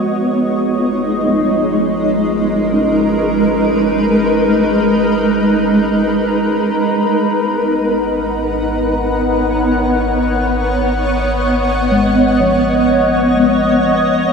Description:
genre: ambient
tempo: free time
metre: none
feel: none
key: G# dorian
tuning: A4 = 440 Hz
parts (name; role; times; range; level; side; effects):
- shimmering ambient pad; sustained chords; 0.0-14.3 s; G#3 to F#5; -13 LUFS; equal; chorus, built-in reverb, shimmer reverb
- muted felt-like synth keys; arpeggios; 0.0-14.3 s; E#3 to D#6; -22 LUFS; left 1 dB; chorus, tape echo
- deep rumbling drone; bass; 0.7-14.3 s; G#1; -26 LUFS; equal; built-in reverb
room: wet plate reverb, RT60 2.7 s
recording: echo-heavy mix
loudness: -12 LUFS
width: side -5 dB against mid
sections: 0.0-14.3 A section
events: fade-in on synth keys 0.0-14.3; fade-in on synth drone 0.0-14.3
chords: 0.0 G#m69

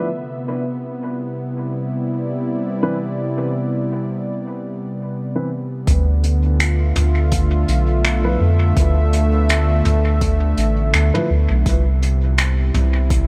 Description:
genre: ambient dub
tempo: 83 BPM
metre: 4/4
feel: swing 56% on 16ths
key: D dorian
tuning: A4 = 440 Hz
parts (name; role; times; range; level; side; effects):
- warm analog pad; sustained chords; 0.0-13.3 s; C3 to E5; -24 LUFS; equal; chorus
- dark upright piano; stabs; 0.0-11.3 s; E3 to B4; -29 LUFS; equal; dub echo
- soft dub sub bass; bass; 5.9-13.3 s; A1 to F2; -18 LUFS; equal; none
- electronic kick drum; drums; 5.9-13.3 s; none; -22 LUFS; equal; none
- vintage brush drum kit; drums; 5.9-13.3 s; finger snaps, hi-hat, toms; -26 LUFS; equal; dub echo
room: little or no reverb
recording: low-pass filter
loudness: -19 LUFS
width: mono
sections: 0.0-5.9 A section; 5.9-13.3 B section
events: filter sweep on upright piano 0.0-5.9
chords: 0.1 Cmaj7; 5.9 Dm69; 11.7 Cmaj7

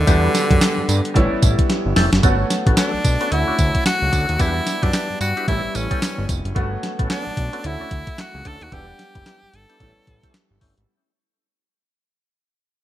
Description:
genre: R&B, new jack swing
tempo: 111 BPM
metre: 4/4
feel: swing 60% on 16ths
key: unclear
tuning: A4 = 440 Hz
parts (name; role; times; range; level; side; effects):
- edgy tenor saxophone; melody; 0.0-10.4 s; D3 to A4; -24 LUFS; equal; none
- clear grand piano; accompaniment; 0.0-10.9 s; F#3 to F#5; -25 LUFS; right 1 dB; analog chorus
- fat analog bass; bass; 0.0-10.9 s; E1 to G2; -22 LUFS; equal; none
- percussive tonewheel organ; stabs; 0.1-10.8 s; A3 to B4; -28 LUFS; left 1 dB; overdrive, chorus vibrato, slow rotary speaker
- crisp 8-bit digital drum machine; drums; 0.1-10.9 s; handclaps, hi-hat, kick drum, snare drum, tambourine; -19 LUFS; equal; gated reverb
room: light reverb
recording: bright 1980s-style digital production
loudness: -17 LUFS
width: side -13 dB against mid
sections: 0.0-2.2 A section; 2.2-10.9 B section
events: drum fill 1.7-2.2; fade-out 2.2-10.9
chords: 0.1 Em7; 1.2 A7; 2.2 Gmaj9#11; 3.3 Dmaj7; 4.4 Em7; 5.5 A7; 6.6 Gmaj9#11; 7.6 Dmaj7; 8.7 Em7; 9.8 A7

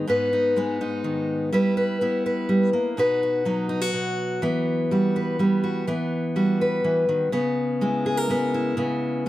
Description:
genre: folk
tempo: 124 BPM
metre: 3/4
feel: straight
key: unclear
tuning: A4 = 440 Hz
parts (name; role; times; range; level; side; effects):
- fingerpicked steel-string acoustic guitar; solo; 0.0-9.3 s; G#2 to B4; -21 LUFS; equal; none
room: light reverb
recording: close, detailed microphones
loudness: -21 LUFS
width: side -15 dB against mid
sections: 0.0-4.4 A section; 4.4-9.3 B section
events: none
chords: 0.0 G#m; 1.5 Em/G; 3.0 B; 4.4 Emadd9; 7.3 C#m7

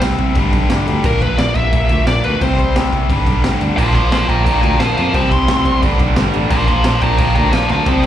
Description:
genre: punk rock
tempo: 176 BPM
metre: 4/4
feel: straight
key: unclear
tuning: A4 = 440 Hz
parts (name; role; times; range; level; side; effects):
- crunchy overdriven guitar; riff; 0.0-8.1 s; G2 to C4; -22 LUFS; right 1 dB; slapback echo
- distorted electric guitar; riff; 0.0-8.1 s; G2 to C4; -22 LUFS; left 10 dB; distortion, slapback echo
- picked electric bass; bass; 0.0-8.1 s; G1 to F2; -19 LUFS; equal; none
- raw garage drum kit; drums; 0.0-8.1 s; crash cymbal, kick drum, snare drum; -17 LUFS; equal; none
- smooth overdriven lead guitar; melody; 1.1-8.0 s; Bb4 to C6; -18 LUFS; left 2 dB; slapback echo
- tight distorted guitar; riff; 3.8-8.1 s; G2 to C4; -21 LUFS; right 11 dB; distortion, slapback echo
room: little or no reverb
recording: live gig heard through the venue's PA, club reverb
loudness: -12 LUFS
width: side -11 dB against mid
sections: 0.0-8.1 A section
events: lead electric guitar solo 0.0-8.1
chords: 0.4 G; 1.0 Bb; 2.4 C5; 3.1 G; 3.8 Bb5; 5.1 C5; 5.8 G; 6.5 Bb

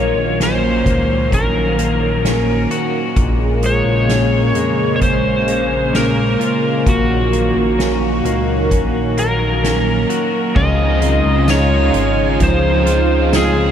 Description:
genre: dream pop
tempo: 65 BPM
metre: 4/4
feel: straight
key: unclear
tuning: A4 = 440 Hz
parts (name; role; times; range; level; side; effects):
- overdriven slide guitar; melody; 0.0-13.7 s; Gb4 to Eb5; -19 LUFS; equal; tape echo
- phased analog pad; sustained chords; 0.0-13.7 s; Db3 to F4; -19 LUFS; right 1 dB; phaser, chorus
- electric guitar at the edge of break-up; arpeggios; 0.0-13.7 s; Bb2 to Gb4; -21 LUFS; left 3 dB; analog chorus, tape echo
- chorused synth bass; bass; 0.0-13.7 s; Ab1 to F2; -19 LUFS; equal; none
- soft-mallet drum kit; drums; 0.4-13.5 s; crash cymbal, hi-hat, kick drum, snare drum, tambourine; -22 LUFS; equal; none
- crunchy overdriven guitar; accompaniment; 10.5-13.7 s; Db3 to F4; -24 LUFS; right 4 dB; tremolo, analog chorus
- drifting glass-harmonics texture; texture; 11.3-13.7 s; F5 to Ab5; -30 LUFS; right 1 dB; chorus, built-in reverb, tape echo
room: moderate huge ambient reverb, RT60 8.4 s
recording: dreamy mix soaked in reverb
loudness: -13 LUFS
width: side -9 dB against mid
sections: 0.0-10.6 A section; 10.6-13.7 B section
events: none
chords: 0.0 Gb6/Bb; 3.2 Bbm7; 6.9 Gb6/Bb; 10.6 Dbmaj7

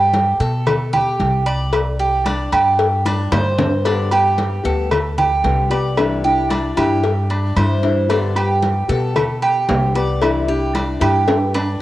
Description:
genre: latin, Cuban son and guajira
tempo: 113 BPM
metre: 4/4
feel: straight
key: G major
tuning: A4 = 440 Hz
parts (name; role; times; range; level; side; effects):
- Cuban tres; arpeggios; 0.0-11.8 s; D4 to D5; -19 LUFS; right 2 dB; cassette tape
- upright bass; bass; 0.0-11.8 s; C2 to B2; -20 LUFS; equal; none
- congas; percussion; 0.1-11.8 s; none; -26 LUFS; left 2 dB; none
- cowbell and bongos; percussion; 0.1-11.5 s; none; -24 LUFS; left 5 dB; none
- agogo bells and timbales; percussion; 0.7-11.8 s; none; -24 LUFS; right 2 dB; none
- nylon-string guitar; accompaniment; 3.8-11.3 s; C3 to G4; -22 LUFS; left 4 dB; cassette tape
room: moderate lush hall reverb, RT60 2.3 s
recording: home recording on cassette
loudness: -15 LUFS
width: side -15 dB against mid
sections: 0.0-11.8 A section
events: drum fill 3.1-3.9, 11.3-11.8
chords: 0.0 Gadd9; 1.7 Csus2; 3.9 Gadd9; 6.0 Cadd9; 8.1 Gadd9; 10.2 Cadd9

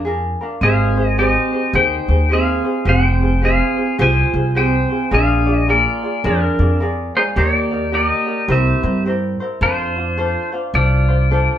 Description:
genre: Hawaiian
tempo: 107 BPM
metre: 4/4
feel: swing 62% on 8ths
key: unclear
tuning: A4 = 435 Hz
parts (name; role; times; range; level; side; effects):
- pedal steel guitar; melody; 0.0-11.6 s; D4 to Ab5; -18 LUFS; left 1 dB; none
- ukulele; accompaniment; 0.0-11.6 s; D4 to D5; -22 LUFS; left 1 dB; none
- upright bass; bass; 0.0-11.5 s; F1 to G2; -18 LUFS; equal; none
- vibraphone with hard mallets; second line; 0.6-9.0 s; F3 to F4; -22 LUFS; right 3 dB; none
room: wet studio reverb, RT60 0.7 s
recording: band playing live in one room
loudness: -14 LUFS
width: side -10 dB against mid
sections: 0.0-9.6 A section; 9.6-11.6 B section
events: none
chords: 0.0 Bb7; 0.6 Abmaj7; 2.9 Fmadd9; 5.1 Bb7; 7.4 Ebmaj7; 8.5 C7; 9.6 F6

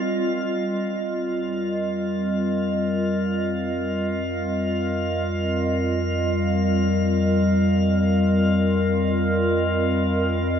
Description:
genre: ambient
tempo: free time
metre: none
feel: none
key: unclear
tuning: A4 = 441 Hz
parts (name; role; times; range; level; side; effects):
- warbly tape-like pad; sustained chords; 0.0-10.6 s; G3 to Eb5; -21 LUFS; equal; chorus, built-in reverb
- round analog bass; bass; 0.0-10.6 s; F2; -28 LUFS; equal; none
- drifting glass-harmonics texture; texture; 0.0-10.6 s; F4 to F5; -30 LUFS; equal; chorus, built-in reverb
room: wet huge ambient reverb, RT60 7.3 s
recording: cassette tape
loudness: -20 LUFS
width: side -8 dB against mid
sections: 0.0-10.6 A section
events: fade-in on analog synth bass 0.0-10.6; fade-in on synth texture 0.0-10.6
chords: 0.0 F5

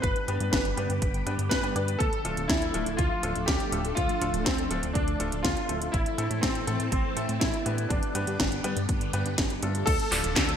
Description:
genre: italo disco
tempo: 122 BPM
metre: 4/4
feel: straight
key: D dorian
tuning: A4 = 440 Hz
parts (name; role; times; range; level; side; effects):
- warm electric grand piano; melody; 0.0-10.6 s; C4 to B4; -31 LUFS; equal; ensemble chorus, digital delay
- phased string machine; sustained chords; 0.0-10.6 s; D3 to A4; -35 LUFS; right 1 dB; ensemble chorus, phaser
- bright baby grand piano; stabs; 0.0-10.6 s; A3 to D5; -36 LUFS; left 3 dB; none
- chorused synth bass; bass; 0.0-10.6 s; D1 to A2; -31 LUFS; equal; none
- electronic kick drum; drums; 0.0-10.5 s; none; -30 LUFS; equal; studio reverb
- house drum kit; drums; 0.0-10.6 s; crash cymbal, handclaps, hi-hat, snare drum; -30 LUFS; equal; studio reverb, gated reverb
room: light reverb, digital ambience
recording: bright 1980s-style digital production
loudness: -25 LUFS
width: side -8 dB against mid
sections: 0.0-9.9 A section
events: filter sweep on string machine 0.0-9.9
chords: 0.0 G; 2.0 Dm; 5.9 Am; 7.9 G; 9.9 Dm

